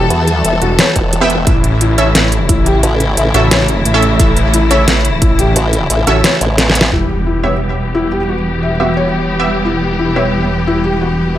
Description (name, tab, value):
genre	dark technical drum and bass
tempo	176 BPM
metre	4/4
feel	straight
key	E dorian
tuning	A4 = 439 Hz
part	warm symphonic string section	sustained chords	0.0-11.4 s	C#3 to A4	-17 LUFS	left 1 dB	sidechain pumping, low-pass filter
part	wide detuned saw bass	bass	0.0-11.4 s	E1 to A1	-16 LUFS	equal	chorus, tube saturation
part	felt-muted upright piano	arpeggios	0.1-11.4 s	E4 to E5	-19 LUFS	left 2 dB	sidechain pumping, digital delay
part	formant-sweep wobble bass	bass	0.1-3.3, 5.6-6.9 s	E1 to E2	-14 LUFS	equal	chorus
part	dubstep drum kit	drums	0.1-6.9 s	hi-hat, snare drum	-13 LUFS	equal	small room ambience
part	electronic kick drum	drums	1.0-5.3 s	none	-14 LUFS	equal	small room ambience
part	orchestra-hit-like synth stab	stabs	1.2-10.3 s	B3 to E5	-18 LUFS	right 2 dB	built-in reverb, vintage 12-bit sampler grit, digital delay
part	impact	sound effects	6.9-8.3 s	none	-22 LUFS	equal	none
room	light reverb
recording	none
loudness	-10 LUFS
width	side -12 dB against mid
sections	0.0-6.9 A section; 6.9-11.4 B section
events	kick drops out 6.2-6.9; drum fill 6.6-6.9; impact 6.9-8.3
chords	0.0 Em; 1.5 A; 6.9 Em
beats	| 0.10 0.45 0.79 1.13 | 1.47 1.81 2.15 2.49 | 2.83 3.17 3.51 3.85 | 4.20 4.54 4.88 5.22 | 5.56 5.90 6.24 6.58 | 6.92 7.26 7.61 7.95 | 8.29 8.63 8.97 9.31 | 9.65 9.99 10.33 10.67 | 11.01 11.36